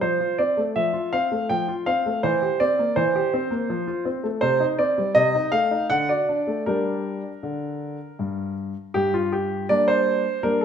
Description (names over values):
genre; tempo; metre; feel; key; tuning
classical-period piano sonatina; 81 BPM; 3/4; straight; F major, G minor from 4.4 s; A4 = 440 Hz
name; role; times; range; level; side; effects
clear concert grand piano; solo; 0.0-10.6 s; G2 to G5; -20 LUFS; equal; none
room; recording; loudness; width
moderate recital hall reverb, RT60 1.5 s; none; -20 LUFS; side -8 dB against mid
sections
0.0-8.9 A section; 8.9-10.6 B section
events
none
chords
0.0 F; 2.2 C7/E; 3.7 F; 4.4 Cm; 5.2 Adim/C; 5.9 D; 6.7 Gm